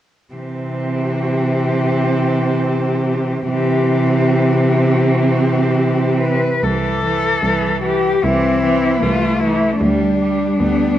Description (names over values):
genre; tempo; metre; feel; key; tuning
classical, lyrical piece for cello ensemble; 76 BPM; 4/4; rubato; C major; A4 = 440 Hz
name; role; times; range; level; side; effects
rich cello; melody; 0.3-11.0 s; D4 to B4; -20 LUFS; left 4 dB; none
clear cello; second line; 0.3-11.0 s; E3 to C4; -21 LUFS; right 5 dB; none
clear cello; accompaniment; 0.3-11.0 s; E3 to C4; -20 LUFS; left 1 dB; none
rich cello; bass; 0.3-11.0 s; C2 to C3; -19 LUFS; right 1 dB; none
room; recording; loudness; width
moderate recital hall reverb, RT60 1.4 s; worn, warbling old tape, cassette tape, warbly pitch drift; -14 LUFS; side -12 dB against mid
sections
0.3-6.6 A section; 6.6-11.0 B section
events
none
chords
0.3 C; 9.8 G5/D